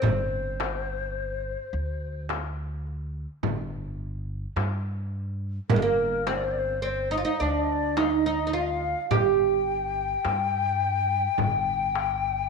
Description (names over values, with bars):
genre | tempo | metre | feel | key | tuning
Arabic maqam ensemble | 106 BPM (eighths) | 10/8 | straight | G maqam bayati | A4 = 442 Hz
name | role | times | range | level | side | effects
oud | melody | 0.0-12.5 s | Ab3+50c to G4 | -25 LUFS | right 4 dB | none
breathy bright ney | second line | 0.0-12.5 s | Bb4 to G5 | -29 LUFS | left 8 dB | none
upright bass | bass | 0.0-12.5 s | G1 to G2 | -32 LUFS | equal | none
darbuka | percussion | 0.0-12.2 s | none | -32 LUFS | left 8 dB | none
frame drum | percussion | 0.0-11.6 s | none | -30 LUFS | right 8 dB | none
room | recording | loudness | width
moderate echo chamber reverb, RT60 1.8 s, small room ambience | 1960s-style stereo with parts hard left and right | -24 LUFS | side -4 dB against mid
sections
0.0-12.5 A section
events
none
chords
none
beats
| 0.03 0.59 1.16 1.73 2.30 2.86 3.43 4.00 4.57 5.13 | 5.70 6.27 6.84 7.41 7.97 8.54 9.11 9.68 10.25 10.82 | 11.38 11.95